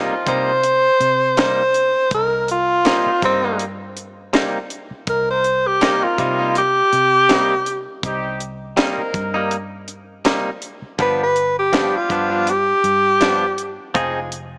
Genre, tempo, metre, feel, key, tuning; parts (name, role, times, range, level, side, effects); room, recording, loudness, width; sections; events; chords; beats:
straight-eighth soul blues; 81 BPM; 4/4; swing 55% on 16ths; C minor; A4 = 440 Hz
dark horn section; sustained chords; 0.0-14.3 s; F3 to C5; -31 LUFS; equal
direct-recorded clean electric guitar; stabs; 0.0-14.2 s; G2 to Ab4; -25 LUFS; equal
vintage muted fingered electric bass; bass; 0.0-14.6 s; F1 to C3; -33 LUFS; equal
breathy tenor saxophone; melody; 0.3-13.9 s; C4 to C5; -18 LUFS; equal
tight funk drum kit; drums; 0.3-14.5 s; hi-hat, kick drum, snare drum; -24 LUFS; equal
light reverb, studio reverb; small speaker sound; -18 LUFS; mono
0.0-14.6 A section
0.0 Cm7; 11.0 G7; 14.0 Fm7
0.64 1.38 | 2.12 2.86 3.60 4.34 | 5.08 5.82 6.55 7.29 | 8.03 8.77 9.51 10.25 | 10.99 11.73 12.47 13.21 | 13.95